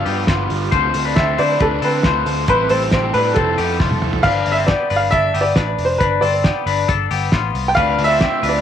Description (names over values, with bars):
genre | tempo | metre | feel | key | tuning
jangly indie pop | 136 BPM | 4/4 | straight | G mixolydian | A4 = 437 Hz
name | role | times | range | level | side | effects
warm upright piano | melody | 0.0-8.6 s | A4 to G5 | -18 LUFS | right 1 dB | slapback echo
raw garage guitar | accompaniment | 0.0-4.3, 7.8-8.6 s | A2 to A4 | -25 LUFS | right 13 dB | overdrive
string machine, violas | sustained chords | 0.0-4.2 s | D3 to E5 | -30 LUFS | equal | ensemble chorus
clean electric guitar | arpeggios | 0.0-8.6 s | A3 to C5 | -20 LUFS | left 11 dB | spring reverb, slapback echo
vintage muted picked electric bass | bass | 0.0-8.6 s | F1 to D3 | -23 LUFS | equal | none
cloth-damped thuddy drum kit | drums | 0.1-8.5 s | crash cymbal, hi-hat, kick drum, snare drum, toms | -21 LUFS | equal | none
room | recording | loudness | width
light reverb, small room ambience | 1960s-style stereo with parts hard left and right, vinyl crackle | -14 LUFS | side -9 dB against mid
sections
0.0-4.2 A section; 4.2-8.6 B section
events
drum fill 3.8-4.2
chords
0.0 G7; 0.7 Dm7; 2.5 Am7; 3.4 Fmaj7; 4.2 G7; 7.8 Dm7